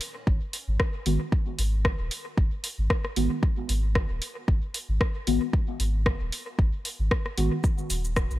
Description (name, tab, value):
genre	dub techno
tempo	114 BPM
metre	4/4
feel	swing 55% on 16ths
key	G# minor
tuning	A4 = 439 Hz
part	punchy analog drum machine	drums	0.0-8.4 s	hi-hat, rim click, shaker	-31 LUFS	left 1 dB	overdrive, small room ambience, dub echo
part	soft dub sub bass	bass	0.3-8.4 s	D#1 to A#1	-26 LUFS	equal	sidechain pumping
part	electronic kick drum	drums	0.3-8.3 s	none	-25 LUFS	equal	small room ambience
part	deep mellow chord stab	stabs	1.1-7.6 s	D#3 to F#4	-30 LUFS	left 1 dB	chorus, phaser, sidechain pumping, dub echo
room	little or no reverb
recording	none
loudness	-24 LUFS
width	side -15 dB against mid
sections	0.0-8.4 A section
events	filter sweep on synth stab 0.0-8.4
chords	0.0 G#m7; 7.6 N.C.